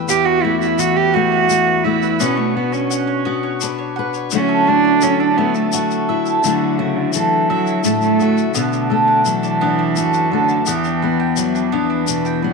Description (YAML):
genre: acoustic folk duo or small band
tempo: 57 BPM (dotted quarters)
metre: 6/8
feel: straight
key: E dorian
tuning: A4 = 439 Hz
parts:
  - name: fingerpicked steel-string acoustic guitar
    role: accompaniment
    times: 0.0-12.5 s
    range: E2 to B4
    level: -19 LUFS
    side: left 13 dB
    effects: none
  - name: bowl-back mandolin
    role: arpeggios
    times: 0.0-12.5 s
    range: G3 to G5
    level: -21 LUFS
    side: right 3 dB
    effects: none
  - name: warm cello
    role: second line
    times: 0.1-12.5 s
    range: C#3 to G4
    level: -18 LUFS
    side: right 9 dB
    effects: tape echo
  - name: tube shaker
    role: percussion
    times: 0.1-12.3 s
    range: none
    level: -26 LUFS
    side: left 16 dB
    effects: none
room: wet echo chamber reverb, RT60 1.5 s, small room ambience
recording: 1960s-style stereo with parts hard left and right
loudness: -14 LUFS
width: side -4 dB against mid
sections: 0.0-6.4 A section; 6.4-8.6 B section; 8.6-12.5 C section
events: cello solo 0.0-6.4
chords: 0.0 Emadd9; 2.2 Bmadd9; 4.3 Dadd9; 8.6 Bm7; 10.7 Em7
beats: | 0.08 1.14 | 2.20 3.26 | 4.32 5.38 | 6.43 7.49 | 8.55 9.61 | 10.67 11.72